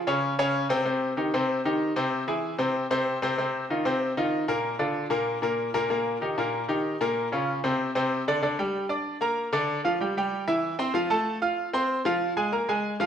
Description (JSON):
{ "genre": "latin", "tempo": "190 BPM", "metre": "4/4", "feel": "straight", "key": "C minor", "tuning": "A4 = 440 Hz", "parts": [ { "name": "bright grand piano", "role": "solo", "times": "0.1-13.1 s", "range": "Bb2 to F6", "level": "-24 LUFS", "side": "equal", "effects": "none" } ], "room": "wet large studio reverb, RT60 1.3 s", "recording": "none", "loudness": "-24 LUFS", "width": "side -8 dB against mid", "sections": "0.0-8.4 A section; 8.4-13.1 B section", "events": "none", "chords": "0.2 N.C.; 0.9 Cm; 2.1 Caug; 3.4 F5; 4.6 Bb; 5.9 Eb; 7.2 Bbmadd9; 7.8 Csus2; 8.4 Gm/D; 9.7 G5; 10.3 C; 10.9 F; 12.2 Bb5" }